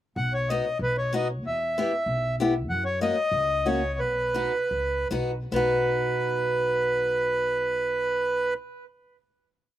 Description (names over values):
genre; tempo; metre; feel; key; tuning
alpine folk, alpine dance band; 68-97 BPM; 2/4; straight; B major; A4 = 440 Hz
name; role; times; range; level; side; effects
accordion; melody; 0.2-8.5 s; B4 to F#5; -25 LUFS; right 1 dB; slapback echo
upright bass; bass; 0.2-8.5 s; B1 to F#2; -32 LUFS; equal; none
picked steel-string acoustic guitar; accompaniment; 0.5-8.6 s; A#3 to G4; -29 LUFS; left 2 dB; none
room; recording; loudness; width
light reverb; recorded outdoors, with no room sound; -23 LUFS; side -12 dB against mid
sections
0.2-5.5 A section; 5.5-9.0 final chord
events
slowing down 2.7-5.5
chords
0.2 B; 1.4 Em; 2.7 F#; 4.0 B